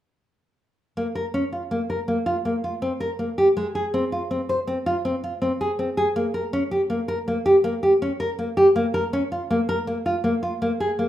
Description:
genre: contemporary instrumental, contemporary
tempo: 162 BPM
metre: 7/4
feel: straight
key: Bb dorian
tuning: A4 = 440 Hz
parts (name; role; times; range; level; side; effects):
- nylon-string guitar; arpeggios; 1.0-11.1 s; Ab3 to C5; -21 LUFS; equal; none
room: light reverb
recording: minimal, uncompressed stereo recording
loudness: -21 LUFS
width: side -12 dB against mid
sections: 1.0-11.1 A section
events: none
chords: none

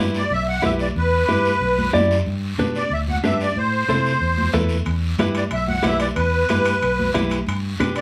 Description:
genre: latin, cumbia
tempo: 184 BPM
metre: 4/4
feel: straight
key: E minor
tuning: A4 = 441 Hz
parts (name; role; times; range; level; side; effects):
- clean electric guitar; accompaniment; 0.0-8.0 s; D4 to D5; -25 LUFS; equal; none
- fingered electric bass; bass; 0.0-8.0 s; B1 to C3; -25 LUFS; equal; none
- guiro; percussion; 0.1-8.0 s; none; -36 LUFS; equal; none
- musette accordion; melody; 0.2-8.0 s; B4 to F#5; -23 LUFS; equal; none
- congas; percussion; 0.6-8.0 s; none; -29 LUFS; equal; none
- timbales; percussion; 4.9-8.0 s; none; -32 LUFS; equal; none
room: moderate studio reverb, RT60 0.6 s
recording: band playing live in one room, small room ambience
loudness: -20 LUFS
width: mono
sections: 0.0-8.0 A section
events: none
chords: 0.0 Em; 2.3 G; 3.6 Am; 4.9 Em; 7.5 G

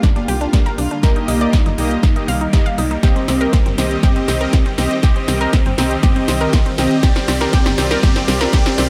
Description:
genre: progressive house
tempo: 120 BPM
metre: 4/4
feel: straight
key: C minor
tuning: A4 = 443 Hz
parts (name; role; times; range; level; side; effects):
- shimmering ambient pad; sustained chords; 0.0-8.9 s; D3 to G4; -29 LUFS; equal; chorus, built-in reverb, phaser, sidechain pumping
- analog pluck; arpeggios; 0.0-8.9 s; C4 to F5; -25 LUFS; equal; chorus, sidechain pumping, tape echo
- tight sequencer bass; bass; 0.0-8.9 s; G1 to C2; -25 LUFS; equal; tube saturation, sidechain pumping
- big-room dance drum kit; drums; 0.0-8.9 s; hi-hat, snare drum; -26 LUFS; equal; sidechain pumping on hats
- dusty soul sampler-style drum kit; drums; 0.0-8.9 s; hi-hat, snare drum; -37 LUFS; equal; none
- electronic kick drum; drums; 0.0-8.6 s; none; -16 LUFS; equal; overdrive
- riser; sound effects; 0.8-8.9 s; none; -34 LUFS; equal; none
- soft supersaw; stabs; 0.2-8.9 s; Bb3 to F5; -23 LUFS; equal; cassette tape, sidechain pumping, low-pass filter, tape echo
room: light reverb, digital ambience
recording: none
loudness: -16 LUFS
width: mono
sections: 0.0-8.9 A section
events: build-up 0.0-8.9; drum fill 0.0-8.9; filter sweep on supersaw synth 0.0-8.9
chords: 0.0 Gm7; 1.0 Eb; 3.0 Cm; 7.0 Gm7

